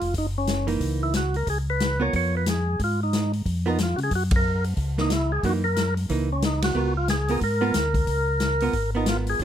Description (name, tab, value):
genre	soul jazz organ trio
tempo	182 BPM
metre	4/4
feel	swing 61% on 8ths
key	Db mixolydian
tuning	A4 = 440 Hz
part	percussive tonewheel organ	melody	0.0-9.4 s	Db4 to Db5	-26 LUFS	equal	slow rotary speaker
part	mellow tonewheel organ	bass	0.0-9.4 s	F1 to Db3	-25 LUFS	equal	chorus vibrato, slow rotary speaker
part	swinging big-band drum kit	drums	0.0-9.4 s	hi-hat, kick drum, ride cymbal, snare drum	-28 LUFS	left 2 dB	none
part	archtop guitar, miked and amplified	accompaniment	0.7-9.4 s	Fb3 to Bb4	-27 LUFS	right 5 dB	none
room	little or no reverb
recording	close, detailed microphones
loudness	-21 LUFS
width	side -10 dB against mid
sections	0.0-9.4 A section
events	band accent 4.3, 6.6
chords	0.1 Gb6; 1.5 Db13; 4.1 Gb6; 6.8 Db6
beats	| 0.15 0.48 0.81 1.14 | 1.47 1.80 2.13 2.46 | 2.79 3.12 3.45 3.78 | 4.11 4.44 4.77 5.10 | 5.43 5.76 6.09 6.42 | 6.75 7.08 7.41 7.74 | 8.07 8.40 8.73 9.06 | 9.39